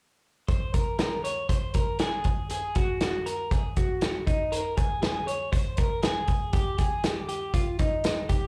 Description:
jangly indie pop; 119 BPM; 4/4; straight; Bb minor; A4 = 440 Hz
electric guitar through a small old amp; arpeggios; 0.5-8.5 s; Eb4 to Db5; -33 LUFS; equal; slapback echo
vintage drum kit; drums; 0.5-8.4 s; hi-hat, kick drum, snare drum; -29 LUFS; equal
little or no reverb; live gig heard through the venue's PA, club reverb; -27 LUFS; mono
0.5-8.5 A section
| 0.49 1.00 1.50 2.00 | 2.51 3.01 3.52 4.02 | 4.52 5.03 5.53 6.03 | 6.54 7.04 7.54 8.05

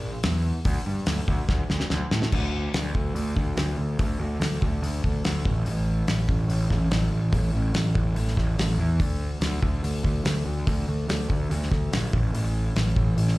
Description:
classic rock; 144 BPM; 4/4; straight; A4 = 440 Hz
fuzz picked electric bass; bass; 0.0-13.3 s; A1 to A2; -24 LUFS; equal; overdrive
damped 70s drum kit; drums; 0.2-13.3 s; crash cymbal, hi-hat, kick drum, snare drum; -27 LUFS; equal
little or no reverb; live gig heard through the venue's PA, club reverb; -22 LUFS; side -19 dB against mid
0.0-2.3 A section; 2.3-13.4 B section
drum fill 1.5-2.3
0.24 | 0.66 1.07 1.49 1.90 | 2.32 2.74 3.16 3.57 | 3.99 4.41 4.83 5.24 | 5.66 6.08 6.50 6.91 | 7.33 7.75 8.16 8.58 | 9.00 9.41 9.83 10.25 | 10.67 11.08 11.50 11.92 | 12.34 12.75 13.17

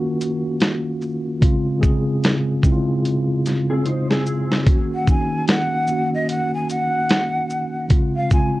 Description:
lo-fi hip hop; 74 BPM; 4/4; swing 61% on 16ths; Eb dorian; A4 = 440 Hz
mellow tine electric piano; accompaniment; 0.0-8.6 s; Db3 to Ab4; -21 LUFS; equal; medium stereo tremolo, cassette tape
dusty soul sampler-style drum kit; drums; 0.2-8.5 s; hi-hat, kick drum, shaker, snare drum; -18 LUFS; equal
mellow electric guitar; second line; 3.7-4.6 s; C4 to C5; -27 LUFS; left 1 dB; ensemble chorus, tape echo
breathy jazz flute; melody; 4.9-8.6 s; Eb5 to Ab5; -22 LUFS; equal
moderate small room reverb, RT60 0.5 s; worn, warbling old tape, cassette tape, warbly pitch drift; -17 LUFS; side -18 dB against mid
0.0-8.6 A section
drum fill 3.9-4.7
0.0 Ebm7; 1.4 Dbmaj7; 4.7 Ebm7; 7.9 Dbmaj7
0.61 | 1.42 2.23 3.04 3.85 | 4.66 5.47 6.29 7.10 | 7.91

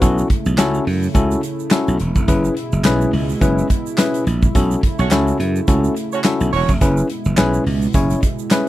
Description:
early-eighties boogie funk; 106 BPM; 4/4; swing 56% on 16ths; F# minor; A4 = 440 Hz
tine electric piano; accompaniment; 0.0-8.7 s; C#4 to C#5; -19 LUFS; left 2 dB; overdrive
warm analog pad; sustained chords; 0.0-8.7 s; B2 to E4; -25 LUFS; right 2 dB; chorus
slap bass; bass; 0.0-8.1 s; E1 to F#2; -18 LUFS; right 1 dB
modern studio drum kit; drums; 0.0-8.7 s; handclaps, hi-hat, kick drum, snare drum; -19 LUFS; equal
egg shaker; percussion; 0.0-8.7 s; -36 LUFS; right 27 dB
warm horn section; second line; 5.0-6.7 s; A3 to C#5; -20 LUFS; right 7 dB
little or no reverb; -15 LUFS; side -15 dB against mid
0.0-8.7 A section
band accent 4.5-6.8
0.0 B9sus4; 2.3 F#9sus4; 4.5 B9sus4; 6.8 F#9sus4
| 0.02 0.58 1.15 1.72 | 2.28 2.85 3.42 3.98 | 4.55 5.11 5.68 6.25 | 6.81 7.38 7.94 8.51

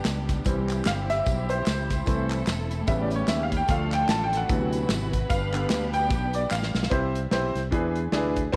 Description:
uptempo gospel; 149 BPM; 4/4; swing 59% on 8ths; C major; A4 = 441 Hz
clear grand piano; accompaniment; 0.0-8.6 s; C3 to A5; -30 LUFS; equal
warm studio string section; sustained chords; 0.0-6.9 s; C3 to B4; -36 LUFS; equal
natural country drum kit; drums; 0.0-8.6 s; hi-hat, kick drum, snare drum; -31 LUFS; equal
fingered electric bass; bass; 0.1-8.6 s; E1 to E2; -31 LUFS; equal
handclaps and tambourine; percussion; 0.1-6.8 s; -43 LUFS; equal
moderate echo chamber reverb, RT60 1.9 s, studio reverb; -26 LUFS; mono
0.0-6.9 A section; 6.9-8.6 B section
grand piano solo 0.0-6.9; drum fill 6.5-6.9
0.5 C; 2.1 Am/C; 2.9 A7; 3.7 Dm; 4.5 D13; 5.3 G; 6.9 C; 7.7 E7
0.05 | 0.46 0.86 1.26 1.67 | 2.07 2.48 2.88 3.28 | 3.69 4.09 4.50 4.90 | 5.30 5.71 6.11 6.51 | 6.92 7.32 7.73 8.13 | 8.54

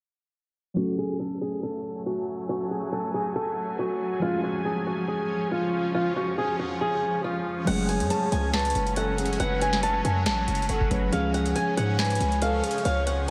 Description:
hip hop, trap; 139 BPM; 4/4; half-time; F# harmonic minor; A4 = 440 Hz
muted felt-like synth keys; accompaniment; 0.7-13.3 s; E#3 to C#5; -34 LUFS; equal; chorus, low-pass filter
fingerpicked swing-style acoustic guitar; melody; 0.8-13.3 s; E#4 to A5; -30 LUFS; equal; low-pass filter, analog delay
granular cloud pad; sustained chords; 1.5-13.3 s; E#3 to G#5; -36 LUFS; equal; built-in reverb, phaser, low-pass filter
breathy flute-like synth lead; second line; 7.7-13.3 s; G#4 to C#5; -34 LUFS; equal; chorus, analog delay
distorted 808-style bass; bass; 7.7-13.3 s; F#1 to G#2; -30 LUFS; equal; distortion
booming analog drum machine; drums; 7.7-13.2 s; crash cymbal, hi-hat, kick drum, snare drum; -33 LUFS; equal; overdrive, vintage 12-bit sampler grit
moderate lush hall reverb, RT60 2.0 s; dreamy mix soaked in reverb; -26 LUFS; mono
0.8-7.7 A section; 7.7-13.3 B section
filter sweep 0.8-7.7
0.8 F#madd9; 4.2 C#; 7.7 F#madd9; 11.1 C#
| 0.77 1.20 1.63 2.06 | 2.49 2.92 3.36 3.79 | 4.22 4.65 5.08 5.51 | 5.95 6.38 6.81 7.24 | 7.67 8.10 8.54 8.97 | 9.40 9.83 10.26 10.69 | 11.13 11.56 11.99 12.42 | 12.85 13.28

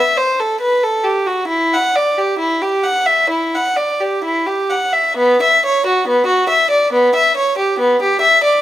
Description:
classical, baroque-style suite movement for unaccompanied violin; 63-71 BPM; 4/4; rubato; E minor, B minor from 5.2 s; A4 = 440 Hz
warm violin; solo; 0.0-8.6 s; B3 to F#5; -12 LUFS; equal
moderate stone room reverb, RT60 1.2 s; -13 LUFS; side -13 dB against mid
0.0-5.2 A section; 5.2-8.6 A section
0.59 | 1.49 2.40 3.31 4.24 | 5.17 6.06 6.92 7.78

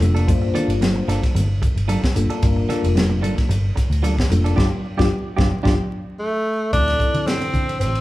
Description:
electric jazz fusion; 112 BPM; 4/4; swing 54% on 16ths; G dorian; A4 = 440 Hz
mellow tine electric piano; accompaniment; 0.0-7.7 s; F3 to C5; -24 LUFS; left 3 dB; slow stereo tremolo, phaser
clean electric guitar; stabs; 0.0-5.7 s; F3 to A4; -28 LUFS; right 3 dB
vintage muted fingered electric bass; bass; 0.0-8.0 s; F1 to D3; -21 LUFS; equal
crisp fusion drum kit; drums; 0.0-8.0 s; hi-hat, kick drum, ride cymbal, snare drum; -22 LUFS; equal
congas; percussion; 0.0-7.9 s; -26 LUFS; right 1 dB
bright tenor saxophone; melody; 6.2-8.0 s; A3 to D4; -21 LUFS; equal
moderate large studio reverb, RT60 1.3 s; band playing live in one room, vinyl crackle; -17 LUFS; side -17 dB against mid
0.0-6.7 A section; 6.7-8.0 B section
band accent 4.6-6.7; tine electric piano fill 5.1-6.7; drum fill 5.6-6.7
0.0 Gm9; 6.7 Dm7
| 0.28 0.81 1.35 1.89 | 2.42 2.96 3.50 4.04 | 4.57 5.11 5.64 6.18 | 6.72 7.26 7.79

